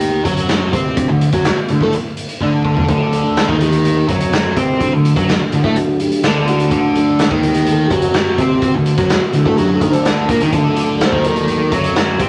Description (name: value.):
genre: psychedelic rock.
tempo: 126 BPM.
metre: 4/4.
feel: straight.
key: D phrygian dominant.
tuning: A4 = 439 Hz.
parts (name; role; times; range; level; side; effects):
percussive tonewheel organ; sustained chords; 0.0-12.3 s; F#3 to D5; -23 LUFS; equal; chorus vibrato, slow rotary speaker.
fuzz guitar; riff; 0.0-12.3 s; D3 to C5; -18 LUFS; equal; distortion, phaser.
growling fingered electric bass; bass; 0.0-12.3 s; D2 to C3; -24 LUFS; equal; overdrive.
raw garage drum kit; drums; 0.0-12.3 s; hi-hat, kick drum, snare drum, toms; -21 LUFS; equal; none.
room: moderate studio reverb, RT60 0.5 s.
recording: none.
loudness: -15 LUFS.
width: mono.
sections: 0.0-12.3 A section.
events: drum fill 2.4-2.9.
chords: 0.0 D.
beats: 0.02 0.50 | 0.98 1.46 1.94 2.42 | 2.90 3.38 3.85 4.33 | 4.81 5.29 5.76 6.24 | 6.72 7.20 7.67 8.15 | 8.63 9.11 9.58 10.06 | 10.54 11.01 11.49 11.97.